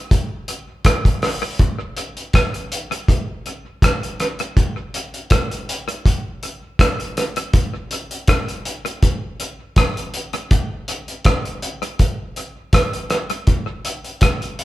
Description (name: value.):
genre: reggae.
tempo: 81 BPM.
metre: 4/4.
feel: swing 54% on 16ths.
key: none.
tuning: none.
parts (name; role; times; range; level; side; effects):
cloth-damped thuddy drum kit; drums; 0.1-14.6 s; hi-hat, kick drum, rim click; -17 LUFS; equal; tape echo.
room: moderate large studio reverb, RT60 1.5 s.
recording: band playing live in one room.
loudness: -18 LUFS.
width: side -16 dB against mid.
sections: 0.0-1.6 A section; 1.6-14.6 B section.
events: none.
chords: none.